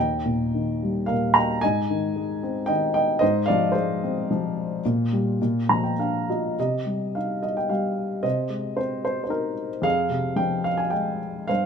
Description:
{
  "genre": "classical, lyrical solo piano",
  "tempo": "98-115 BPM",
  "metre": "3/4",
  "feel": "rubato",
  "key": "Eb major, C minor from 6.6 s",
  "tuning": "A4 = 441 Hz",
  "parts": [
    { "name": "dark baby grand piano", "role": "solo", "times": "0.0-11.7 s", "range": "Eb2 to Bb5", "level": "-22 LUFS", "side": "equal", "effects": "none" }
  ],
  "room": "light reverb",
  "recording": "minimal, uncompressed stereo recording",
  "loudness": "-22 LUFS",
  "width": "side -6 dB against mid",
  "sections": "0.0-6.6 A section; 6.6-11.7 B section",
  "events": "grand piano fill 5.4-6.6",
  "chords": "0.0 Eb; 1.6 Ab; 3.2 Fm/Ab; 4.8 Abmaj9/Bb; 5.4 Bbadd9; 6.6 Cm; 8.2 Ab/C; 9.8 Fmadd9"
}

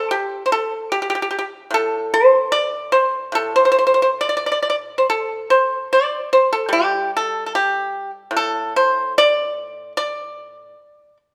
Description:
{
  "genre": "chinese traditional, Chinese solo plucked strings",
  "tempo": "74 BPM",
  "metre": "2/4",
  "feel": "rubato",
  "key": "unclear",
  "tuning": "A4 = 442 Hz",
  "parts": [
    { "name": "pipa", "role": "solo", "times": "0.0-11.2 s", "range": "A2 to D5", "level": "-19 LUFS", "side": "equal", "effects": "none" }
  ],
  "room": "moderate recital hall reverb, RT60 1.6 s",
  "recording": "none",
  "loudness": "-19 LUFS",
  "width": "mono",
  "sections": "0.0-11.3 A section",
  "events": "none",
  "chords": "none"
}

